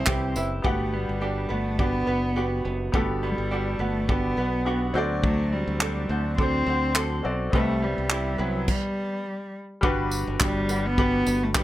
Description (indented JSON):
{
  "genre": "acoustic pop",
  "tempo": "104 BPM",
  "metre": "4/4",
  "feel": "swing 55% on 16ths",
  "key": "G major",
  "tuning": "A4 = 440 Hz",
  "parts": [
    { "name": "dark cello", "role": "melody", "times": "0.0-11.6 s", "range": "F#3 to C4", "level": "-27 LUFS", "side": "equal", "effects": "none" },
    { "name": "bright upright piano", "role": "accompaniment", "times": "0.0-11.6 s", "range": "G3 to F#5", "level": "-33 LUFS", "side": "left 3 dB", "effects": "none" },
    { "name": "ukulele", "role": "accompaniment", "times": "0.0-11.6 s", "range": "C4 to C5", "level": "-31 LUFS", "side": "right 2 dB", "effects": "none" },
    { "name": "direct-recorded clean electric guitar", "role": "arpeggios", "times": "0.0-9.2 s", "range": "F#3 to A4", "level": "-34 LUFS", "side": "right 3 dB", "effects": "spring reverb" },
    { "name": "modern bright fingered electric bass", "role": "bass", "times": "0.0-11.6 s", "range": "F#1 to D2", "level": "-29 LUFS", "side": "equal", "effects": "none" },
    { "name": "natural country drum kit", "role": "drums", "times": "0.1-11.6 s", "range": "crash cymbal, handclaps, kick drum, tambourine", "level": "-25 LUFS", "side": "equal", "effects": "none" }
  ],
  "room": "light reverb",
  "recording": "none",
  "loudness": "-23 LUFS",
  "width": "side -14 dB against mid",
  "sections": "0.6-9.8 A section; 9.8-11.6 B section",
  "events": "stop 8.7-9.8",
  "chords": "0.0 Cmaj7; 0.6 Gmaj7; 4.9 D7; 7.5 Cmaj7; 9.8 Gmaj7"
}